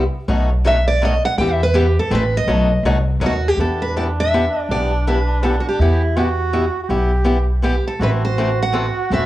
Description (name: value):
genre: acoustic string swing (jazz manouche)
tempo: 163 BPM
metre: 3/4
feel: swing 62% on 8ths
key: E minor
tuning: A4 = 440 Hz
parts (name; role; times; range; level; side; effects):
- picked swing-style acoustic guitar; accompaniment; 0.0-9.3 s; B2 to A4; -22 LUFS; left 3 dB; none
- upright bass; bass; 0.0-9.3 s; E1 to E2; -18 LUFS; equal; none
- picked steel-string acoustic guitar; melody; 0.7-9.3 s; F#4 to G5; -20 LUFS; right 1 dB; none
- breathy soprano saxophone; second line; 3.6-9.3 s; D4 to G4; -24 LUFS; right 4 dB; none
room: light reverb, small room ambience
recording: cassette tape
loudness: -15 LUFS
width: side -15 dB against mid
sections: 0.0-3.6 A section; 3.6-9.3 B section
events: steel-string acoustic guitar solo 0.0-3.6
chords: 0.3 B7; 1.4 Em; 2.1 Am; 2.5 B7b9; 3.6 Em; 8.0 Am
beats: | 0.28 0.64 1.01 | 1.38 1.75 2.11 | 2.48 2.85 3.22 | 3.58 3.95 4.32 | 4.69 5.06 5.42 | 5.79 6.16 6.53 | 6.90 7.26 7.63 | 8.00 8.37 8.74 | 9.10